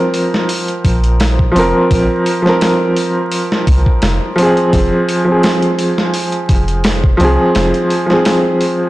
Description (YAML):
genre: trip hop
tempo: 85 BPM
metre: 4/4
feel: swing 54% on 16ths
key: unclear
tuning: A4 = 442 Hz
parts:
  - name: warm upright piano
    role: accompaniment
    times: 0.0-8.9 s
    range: F3 to Bb4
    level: -13 LUFS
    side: equal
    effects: tremolo, vintage 12-bit sampler grit, low-pass filter, tape echo
  - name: dusty soul sampler-style drum kit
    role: drums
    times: 0.1-8.8 s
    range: hi-hat, kick drum, snare drum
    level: -16 LUFS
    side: equal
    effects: none
  - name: soft 808-style bass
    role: bass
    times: 0.8-7.7 s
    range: F1 to C2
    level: -15 LUFS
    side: equal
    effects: none
room: digital ambience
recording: blown-out, overdriven recording, vinyl crackle, overdrive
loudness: -11 LUFS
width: side -17 dB against mid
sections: 0.0-8.9 A section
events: none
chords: 0.0 Bbsus2; 4.7 Fm